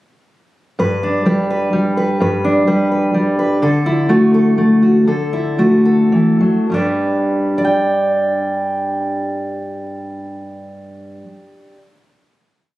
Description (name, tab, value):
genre	folk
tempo	101-127 BPM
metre	3/4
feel	straight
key	G major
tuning	A4 = 440 Hz
part	fingerpicked steel-string acoustic guitar	solo	0.8-11.8 s	G2 to G5	-14 LUFS	equal	none
room	light reverb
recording	recorded on a phone in the room, studio ambience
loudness	-13 LUFS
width	side -17 dB against mid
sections	0.8-6.7 verse; 6.7-10.2 final chord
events	slowing down 3.6-6.7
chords	0.8 G; 3.6 Dadd9; 6.7 G